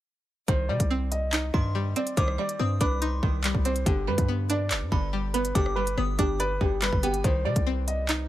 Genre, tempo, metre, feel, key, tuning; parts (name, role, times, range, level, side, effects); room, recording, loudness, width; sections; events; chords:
hip hop, drill; 142 BPM; 4/4; half-time; C harmonic minor; A4 = 440 Hz
dark baby grand piano; melody; 0.5-8.3 s; G4 to Eb5; -30 LUFS; left 1 dB; digital delay
string-like resonator pluck; accompaniment; 0.5-8.3 s; D3 to D5; -31 LUFS; right 1 dB; chorus
hard-hitting 808-style bass; bass; 0.5-8.3 s; F1 to C3; -28 LUFS; equal
drill drum kit; drums; 0.5-8.2 s; handclaps, hi-hat, kick drum, rim click; -26 LUFS; equal
delicate synth tine bell; second line; 1.5-7.2 s; G5 to Eb6; -37 LUFS; left 1 dB; chorus, digital delay
little or no reverb; -24 LUFS; side -14 dB against mid
0.5-8.3 A section
0.5 Cmadd9; 3.9 G; 7.2 Cm